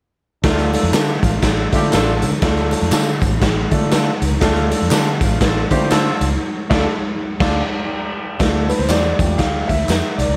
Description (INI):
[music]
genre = uptempo 1960s-style soul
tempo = 121 BPM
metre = 4/4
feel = swing 60% on 8ths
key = D minor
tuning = A4 = 440 Hz
[part]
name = clear horn section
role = second line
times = 0.4-7.6 s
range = A3 to A4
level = -27 LUFS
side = equal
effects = none
[part]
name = warm grand piano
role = accompaniment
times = 0.4-9.7 s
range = A3 to F5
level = -25 LUFS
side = equal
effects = none
[part]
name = vintage muted fingered electric bass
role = bass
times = 0.4-10.4 s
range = A1 to D3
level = -23 LUFS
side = equal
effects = none
[part]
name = raw garage drum kit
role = drums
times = 0.4-10.3 s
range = crash cymbal, hi-hat, kick drum, snare drum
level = -20 LUFS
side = equal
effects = none
[part]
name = congas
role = percussion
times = 0.4-6.4 s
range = none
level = -33 LUFS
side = equal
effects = none
[part]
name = tambourine and handclaps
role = percussion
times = 0.4-10.3 s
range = none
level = -33 LUFS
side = equal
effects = none
[part]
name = electric guitar through a small old amp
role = stabs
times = 0.9-7.6 s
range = A3 to A4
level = -26 LUFS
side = equal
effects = lush chorus
[part]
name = clear grand piano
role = melody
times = 8.7-10.4 s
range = Bb4 to F5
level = -24 LUFS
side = equal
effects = none
[sound]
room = light reverb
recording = none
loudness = -17 LUFS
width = mono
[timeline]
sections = 0.4-8.4 A section; 8.4-10.4 B section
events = band accent 6.4-8.4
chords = 0.4 Dm; 8.1 N.C.; 8.4 Dm